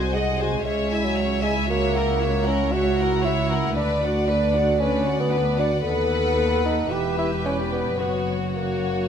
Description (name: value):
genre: quick classical-period movement for symphony orchestra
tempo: 115 BPM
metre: 4/4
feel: rubato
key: B minor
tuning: A4 = 440 Hz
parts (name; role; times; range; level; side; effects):
- warm studio violin section; melody; 0.0-9.1 s; C#5 to G#5; -32 LUFS; left 5 dB; none
- rich studio violin section; second line; 0.0-9.1 s; F#4 to E5; -29 LUFS; left 2 dB; none
- dark studio viola section; accompaniment; 0.0-9.1 s; C#4 to A4; -29 LUFS; left 1 dB; none
- dark studio double bass section; bass; 0.0-9.1 s; E1 to D#2; -27 LUFS; right 2 dB; none
- warm studio cello section; bass; 0.0-9.1 s; B#1 to F#2; -28 LUFS; right 1 dB; none
- mellow bassoon; accompaniment; 0.1-9.1 s; F#3 to G4; -24 LUFS; equal; none
room: moderate scoring stage reverb, RT60 1.6 s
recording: none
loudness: -20 LUFS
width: side -8 dB against mid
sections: 0.0-9.1 A section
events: none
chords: 0.0 G#7/B#; 0.7 C#m; 1.7 F#7/C#; 3.8 Bm/D; 5.9 B7/D#; 6.9 Em; 8.0 F#